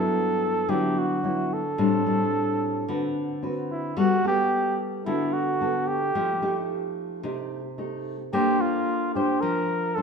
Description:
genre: bossa nova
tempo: 110 BPM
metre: 4/4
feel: straight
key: G major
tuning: A4 = 440 Hz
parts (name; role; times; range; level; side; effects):
- warm flugelhorn; melody; 0.0-10.0 s; E4 to Bb4; -26 LUFS; right 1 dB; none
- nylon-string guitar; accompaniment; 0.0-10.0 s; G2 to C5; -25 LUFS; left 1 dB; none
room: wet scoring stage reverb, RT60 1.5 s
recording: minimal, uncompressed stereo recording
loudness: -23 LUFS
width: side -5 dB against mid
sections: 0.0-8.3 A section; 8.3-10.0 B section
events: none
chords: 0.0 Gmaj13; 1.8 Am7; 2.9 D6; 4.0 Gmaj9; 6.1 F9; 8.3 Bbmaj9

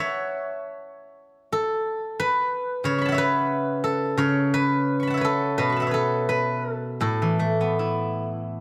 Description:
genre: chinese traditional, Chinese solo plucked strings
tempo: 65-94 BPM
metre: 4/4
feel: rubato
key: A gong mode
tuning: A4 = 441 Hz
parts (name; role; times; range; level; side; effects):
- steel-string zither; solo; 0.0-8.6 s; A2 to C#6; -24 LUFS; equal; none
room: moderate scoring stage reverb, RT60 1.8 s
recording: none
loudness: -24 LUFS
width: mono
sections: 0.0-8.6 A section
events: none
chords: none

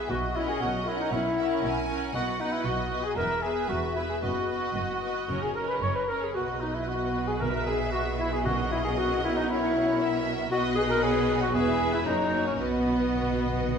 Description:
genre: quick classical-period movement for symphony orchestra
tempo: 115 BPM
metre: 4/4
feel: rubato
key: B major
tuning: A4 = 440 Hz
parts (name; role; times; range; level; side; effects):
- rich studio violin section; melody; 0.0-13.8 s; C#5 to F#5; -38 LUFS; left 5 dB; none
- clear clarinet; second line; 0.0-13.8 s; B3 to C#5; -32 LUFS; left 2 dB; none
- mellow cor anglais; second line; 0.0-13.8 s; B3 to C#5; -34 LUFS; right 2 dB; none
- mellow hollow silver concert flute; second line; 0.0-13.8 s; B4 to C#6; -35 LUFS; left 1 dB; none
- rich studio violin section; second line; 0.0-13.8 s; A#4 to G#5; -37 LUFS; left 2 dB; none
- clear studio viola section; accompaniment; 0.0-13.8 s; A#3 to B4; -34 LUFS; right 3 dB; none
- mellow French horn section; sustained chords; 0.1-13.8 s; B3 to C#5; -33 LUFS; left 5 dB; none
- rich studio cello section; bass; 0.1-13.8 s; E2 to B2; -34 LUFS; right 2 dB; none
- rich studio double bass section; bass; 0.1-13.8 s; E1 to B1; -35 LUFS; right 3 dB; none
- timpani; percussion; 0.1-0.8, 5.3-9.2, 12.6-13.8 s; F#2 to B2; -38 LUFS; equal; none
room: wet concert hall reverb, RT60 1.8 s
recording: minimal, uncompressed stereo recording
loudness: -25 LUFS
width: side -6 dB against mid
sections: 0.0-13.8 A section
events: timpani fill 12.6-13.8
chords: 0.1 F#7/B; 2.1 B; 3.2 E5; 4.2 B/F#; 5.3 F#; 6.4 B; 7.4 E5/B; 8.5 F#7/B; 10.5 B; 11.6 E; 12.1 F#; 12.6 B

